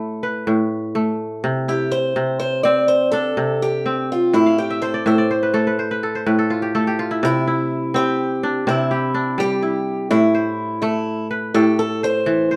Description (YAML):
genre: west african traditional, West African string and xylophone music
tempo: 83 BPM (dotted quarters)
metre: 12/8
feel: straight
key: C major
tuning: A4 = 440 Hz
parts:
  - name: kora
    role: arpeggios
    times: 0.0-12.6 s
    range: A2 to G5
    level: -22 LUFS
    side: equal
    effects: none
  - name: picked old ladder-braced acoustic guitar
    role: melody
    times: 1.7-12.6 s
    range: E4 to D5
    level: -23 LUFS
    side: equal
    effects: plate reverb
room: moderate studio reverb, RT60 0.7 s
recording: dark, warm production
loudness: -19 LUFS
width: mono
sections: 0.0-7.2 A section; 7.2-12.6 B section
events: kora fill 4.5-7.2; steel-string acoustic guitar solo 7.2-12.6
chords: 0.0 N.C.; 1.4 C; 4.3 N.C.; 7.2 C; 10.1 Am